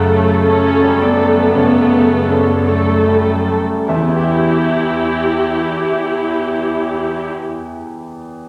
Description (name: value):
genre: cinematic, emotional film score for orchestra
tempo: 49-60 BPM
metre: 4/4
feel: rubato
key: E dorian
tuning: A4 = 439 Hz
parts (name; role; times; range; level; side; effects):
- clear grand piano; accompaniment; 0.0-8.5 s; E2 to F#5; -22 LUFS; equal; none
- dark symphonic viola section; accompaniment; 0.0-7.3 s; A3 to A4; -17 LUFS; equal; none
- concert harp; arpeggios; 0.0-7.8 s; E2 to C#6; -24 LUFS; equal; none
- warm symphonic cello section; bass; 0.0-7.3 s; E2 to F#2; -25 LUFS; equal; none
room: wet scoring stage reverb, RT60 1.6 s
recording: none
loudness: -15 LUFS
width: mono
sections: 0.0-3.9 A section; 3.9-8.5 B section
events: slowing down 0.0-3.9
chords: 0.0 F#m; 3.9 Em